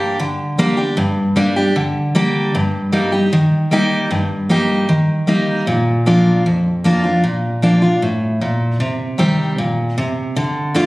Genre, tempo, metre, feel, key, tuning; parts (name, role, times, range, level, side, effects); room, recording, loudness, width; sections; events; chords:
country; 153 BPM; 4/4; straight; A4 = 440 Hz
picked steel-string acoustic guitar; solo; 0.0-10.9 s; F2 to G4; -14 LUFS; equal
moderate large studio reverb, RT60 1.2 s; recorded on a phone in the room, studio reverb, compression; -14 LUFS; side -20 dB against mid
0.0-10.9 A section
0.0 Gm; 2.5 Eb/G; 5.7 Bb; 8.8 Cm; 10.4 Dm